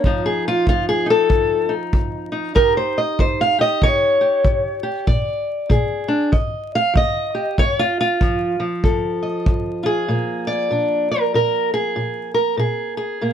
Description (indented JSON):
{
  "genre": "acoustic country blues, solo or duo",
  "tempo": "96 BPM",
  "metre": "4/4",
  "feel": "swing 61% on 8ths",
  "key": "Bb mixolydian",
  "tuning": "A4 = 440 Hz",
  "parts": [
    { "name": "fingerpicked steel-string acoustic guitar", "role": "melody", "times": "0.0-13.3 s", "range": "F2 to F5", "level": "-18 LUFS", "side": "equal", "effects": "none" },
    { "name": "kick drum", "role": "drums", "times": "0.0-9.6 s", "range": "none", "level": "-20 LUFS", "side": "equal", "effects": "none" }
  ],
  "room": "little or no reverb",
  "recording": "close, detailed microphones, vinyl crackle",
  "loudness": "-17 LUFS",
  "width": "side -9 dB against mid",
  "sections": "0.0-10.1 A section; 10.1-13.3 B section",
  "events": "steel-string acoustic guitar solo 0.0-10.1",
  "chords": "0.0 F7; 2.6 Eb7; 5.1 Bb7; 6.3 N.C.; 7.6 F7; 10.1 Bb7"
}